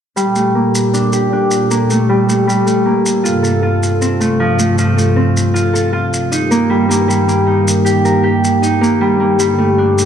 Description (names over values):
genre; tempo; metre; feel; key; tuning
folktronica; 78 BPM; 4/4; straight; G minor; A4 = 440 Hz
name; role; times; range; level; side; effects
warm analog pad; sustained chords; 0.2-10.1 s; G2 to A4; -16 LUFS; right 1 dB; chorus
Celtic harp; arpeggios; 0.2-10.1 s; F3 to Bb4; -13 LUFS; equal; low-pass filter, tape echo
shaker; drums; 0.2-10.1 s; none; -24 LUFS; equal; none
room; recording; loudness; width
moderate echo chamber reverb, RT60 1.9 s; dark, warm production; -11 LUFS; side -8 dB against mid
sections
0.2-10.1 A section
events
filter sweep on harp 0.2-10.1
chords
0.2 Gmadd9; 3.2 F/G; 6.3 Eb/G; 9.4 Dsus4/G